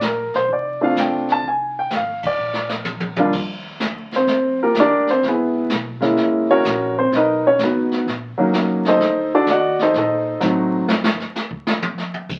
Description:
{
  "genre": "jazz piano trio",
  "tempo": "127 BPM",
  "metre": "4/4",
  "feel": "swing 68% on 8ths",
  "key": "Bb major",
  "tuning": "A4 = 439 Hz",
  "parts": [
    { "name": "warm grand piano", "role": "melody", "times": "0.0-10.9 s", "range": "Eb2 to A5", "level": "-19 LUFS", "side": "equal", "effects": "none" },
    { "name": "upright bass", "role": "bass", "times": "0.0-11.2 s", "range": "F1 to Bb2", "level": "-38 LUFS", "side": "equal", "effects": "none" },
    { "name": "jazz brush drum kit", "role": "drums", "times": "0.0-12.4 s", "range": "brushed snare drum, crash cymbal, hi-hat, kick drum, ride cymbal, snare drum, toms", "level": "-26 LUFS", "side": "equal", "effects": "none" }
  ],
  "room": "wet small room reverb, RT60 0.5 s",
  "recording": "very old 78 rpm record, vinyl crackle",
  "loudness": "-19 LUFS",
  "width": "mono",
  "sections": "0.0-3.3 A section; 3.3-12.4 B section",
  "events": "band accent 2.2; drum fill 2.4-3.3; grand piano solo 3.3-12.4; drum solo 10.9-12.4",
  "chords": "0.0 Bbmaj7; 1.4 Fm; 2.4 Bb; 3.3 Ebmaj9; 5.2 Dbm7; 6.2 Gb7; 7.1 Bmaj7; 9.0 D7b9; 10.9 N.C.",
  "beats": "0.02 0.49 0.96 | 1.44 1.92 2.39 2.86 | 3.34 3.81 4.28 4.76 | 5.23 5.70 6.17 6.64 | 7.12 7.59 8.06 8.53 | 9.00 9.47 9.95 10.42 | 10.89 11.36 11.83 12.30"
}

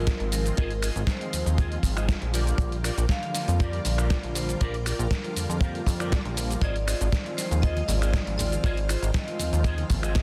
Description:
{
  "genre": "nu-disco, nu disco",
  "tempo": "119 BPM",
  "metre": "4/4",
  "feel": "straight",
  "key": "Ab lydian",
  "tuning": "A4 = 440 Hz",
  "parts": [
    { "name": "vibraphone with hard mallets", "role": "melody", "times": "0.0-9.6 s", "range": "Ab4 to F5", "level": "-37 LUFS", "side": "equal", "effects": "tape echo" },
    { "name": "warm analog pad", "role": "accompaniment", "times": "0.0-10.2 s", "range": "D3 to F4", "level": "-37 LUFS", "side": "equal", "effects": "chorus, sidechain pumping" },
    { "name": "string machine, full ensemble", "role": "sustained chords", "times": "0.0-10.2 s", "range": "Ab4 to F6", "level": "-46 LUFS", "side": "equal", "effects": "none" },
    { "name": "electric guitar with an envelope filter", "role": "riff", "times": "0.0-10.2 s", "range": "F4 to F5", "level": "-39 LUFS", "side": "equal", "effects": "ensemble chorus" },
    { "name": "chorused synth bass", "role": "bass", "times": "0.0-10.2 s", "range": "Ab1 to F2", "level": "-30 LUFS", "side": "equal", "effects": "none" },
    { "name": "dusty soul sampler-style drum kit", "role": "drums", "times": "0.1-10.2 s", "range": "finger snaps, hi-hat, shaker, snare drum", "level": "-36 LUFS", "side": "equal", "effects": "none" },
    { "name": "kick drum", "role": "drums", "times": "0.1-10.2 s", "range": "none", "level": "-27 LUFS", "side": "equal", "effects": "soft clipping on snare" },
    { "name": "congas", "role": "percussion", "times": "7.8-10.0 s", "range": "none", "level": "-39 LUFS", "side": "equal", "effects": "none" }
  ],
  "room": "small room ambience",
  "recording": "dense, heavily limited modern master",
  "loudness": "-26 LUFS",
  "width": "mono",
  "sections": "0.0-10.2 A section",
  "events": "none",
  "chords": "0.0 Ab6; 2.3 Bb6; 6.6 Ab6",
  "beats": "0.07 | 0.57 1.08 1.58 2.09 | 2.59 3.09 3.60 4.10 | 4.61 5.11 5.62 6.12 | 6.62 7.13 7.63 8.14 | 8.64 9.14 9.65 10.15"
}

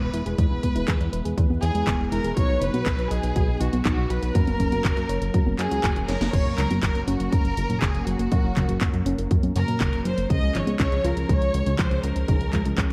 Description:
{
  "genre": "italo disco",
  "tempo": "121 BPM",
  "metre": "4/4",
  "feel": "straight",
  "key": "unclear",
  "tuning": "A4 = 439 Hz",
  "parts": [
    { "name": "rich chamber violin section", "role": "melody", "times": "0.0-12.9 s", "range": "F#4 to Eb5", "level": "-32 LUFS", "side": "equal", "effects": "analog delay" },
    { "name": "mellow synth brass", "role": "stabs", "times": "0.0-12.9 s", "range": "B2 to B4", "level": "-33 LUFS", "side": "equal", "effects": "chorus" },
    { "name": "chorused synth bass", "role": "bass", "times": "0.0-12.9 s", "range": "E1 to F#2", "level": "-29 LUFS", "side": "equal", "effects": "none" },
    { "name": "soft round pluck", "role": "arpeggios", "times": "0.1-12.9 s", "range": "Bb2 to D#5", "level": "-33 LUFS", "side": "equal", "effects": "chorus, analog delay" },
    { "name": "house drum kit", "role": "drums", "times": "0.1-12.9 s", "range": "congas, crash cymbal, handclaps, hi-hat, snare drum", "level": "-34 LUFS", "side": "equal", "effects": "none" },
    { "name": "electronic kick drum", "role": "drums", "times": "0.4-12.9 s", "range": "none", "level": "-26 LUFS", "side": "equal", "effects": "none" }
  ],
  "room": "moderate plate reverb, RT60 1.7 s",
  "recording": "dreamy mix soaked in reverb, vinyl crackle",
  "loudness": "-23 LUFS",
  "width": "mono",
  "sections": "0.0-6.3 A section; 6.3-12.9 A section",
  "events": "drum fill 6.1",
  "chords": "0.0 E; 2.4 B; 4.3 F#; 6.3 Gb; 10.3 Db",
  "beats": "| 0.38 0.88 1.38 1.87 | 2.37 2.86 3.36 3.85 | 4.35 4.85 5.34 5.84 | 6.33 6.83 7.33 7.82 | 8.32 8.81 9.31 9.80 | 10.30 10.80 11.29 11.79 | 12.28 12.78"
}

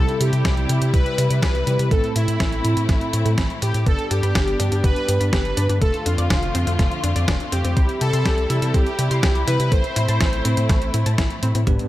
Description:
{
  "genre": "italo disco",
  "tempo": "123 BPM",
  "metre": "4/4",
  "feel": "straight",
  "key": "C major",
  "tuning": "A4 = 440 Hz",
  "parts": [
    { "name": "analog synth brass", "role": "melody", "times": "0.0-11.1 s", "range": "E4 to C5", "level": "-26 LUFS", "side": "equal", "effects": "chorus, tape echo" },
    { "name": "rich studio string section", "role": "sustained chords", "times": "0.0-11.9 s", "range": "D3 to F4", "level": "-28 LUFS", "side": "left 1 dB", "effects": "low-pass filter" },
    { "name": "bell-like tine electric piano", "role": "stabs", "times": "0.0-3.4, 11.7-11.9 s", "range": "G2 to B4", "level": "-27 LUFS", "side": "right 2 dB", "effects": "fast stereo tremolo" },
    { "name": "round analog bass", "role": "bass", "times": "0.0-11.8 s", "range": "F1 to C3", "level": "-21 LUFS", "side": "equal", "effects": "none" },
    { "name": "clean 12-bit digital drum machine", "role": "drums", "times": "0.1-11.9 s", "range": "hi-hat, snare drum, toms", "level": "-26 LUFS", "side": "equal", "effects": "small room ambience" },
    { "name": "electronic kick drum", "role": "drums", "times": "0.4-11.8 s", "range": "none", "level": "-20 LUFS", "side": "equal", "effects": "small room ambience" },
    { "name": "analog pluck", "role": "arpeggios", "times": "3.9-11.8 s", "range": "A3 to C6", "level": "-30 LUFS", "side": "left 1 dB", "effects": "chorus, digital delay" }
  ],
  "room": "light reverb, digital ambience",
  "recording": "none",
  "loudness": "-17 LUFS",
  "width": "side -15 dB against mid",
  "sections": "0.0-11.7 A section",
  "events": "drum fill 11.7",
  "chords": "0.0 C; 1.9 Am; 3.9 G; 5.8 F6; 7.8 C; 9.7 Am",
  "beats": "0.45 0.94 1.43 | 1.91 2.40 2.89 3.38 | 3.87 4.35 4.84 5.33 | 5.82 6.30 6.79 7.28 | 7.77 8.26 8.74 9.23 | 9.72 10.21 10.69 11.18 | 11.67"
}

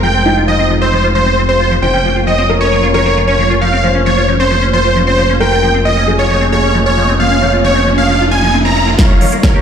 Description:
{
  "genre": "uplifting trance",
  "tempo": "134 BPM",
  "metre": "4/4",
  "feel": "straight",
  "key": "unclear",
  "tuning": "A4 = 440 Hz",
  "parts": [
    { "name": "supersaw chords", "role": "melody", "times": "0.0-9.6 s", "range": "Bb4 to Bb5", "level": "-14 LUFS", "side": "right 1 dB", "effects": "sidechain pumping, low-pass filter, tape echo" },
    { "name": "analog string pad", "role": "sustained chords", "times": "0.0-9.6 s", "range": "F2 to Eb5", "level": "-19 LUFS", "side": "right 1 dB", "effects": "ensemble chorus, sidechain pumping" },
    { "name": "liquid acid bass", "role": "arpeggios", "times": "0.0-9.6 s", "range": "Eb3 to G4", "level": "-19 LUFS", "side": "left 2 dB", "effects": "phaser, ensemble chorus, sidechain pumping, tape echo" },
    { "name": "gritty driven synth bass", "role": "bass", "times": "0.0-9.0 s", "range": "F1", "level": "-15 LUFS", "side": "equal", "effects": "sidechain pumping" },
    { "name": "dark grand piano", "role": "second line", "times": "0.3-8.2 s", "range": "Eb4 to Db5", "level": "-19 LUFS", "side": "left 2 dB", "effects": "ping-pong delay" },
    { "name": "riser", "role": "sound effects", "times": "6.8-9.6 s", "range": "none", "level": "-20 LUFS", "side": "right 2 dB", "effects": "none" },
    { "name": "big-room dance drum kit", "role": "drums", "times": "9.0-9.5 s", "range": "hi-hat, snare drum", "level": "-16 LUFS", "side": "equal", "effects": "overdrive" },
    { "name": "electronic kick drum", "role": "drums", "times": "9.0-9.5 s", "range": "none", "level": "-10 LUFS", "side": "equal", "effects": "none" }
  ],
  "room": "moderate digital room reverb, RT60 1.0 s",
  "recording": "played on a big sound system in a bare room, stone room reverb",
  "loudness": "-9 LUFS",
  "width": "side -8 dB against mid",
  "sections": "0.0-9.0 A section",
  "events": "filter sweep on acid bass 0.0-9.0; riser 6.8-9.0, 9.0-9.6; drum fill 9.0-9.6",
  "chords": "0.0 Fm; 1.8 Bbm/F; 9.0 Ebadd9/F",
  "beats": "| 0.03 0.48 0.93 1.38 | 1.82 2.27 2.72 3.17 | 3.61 4.06 4.51 4.96 | 5.41 5.85 6.30 6.75 | 7.20 7.64 8.09 8.54 | 8.99 9.44"
}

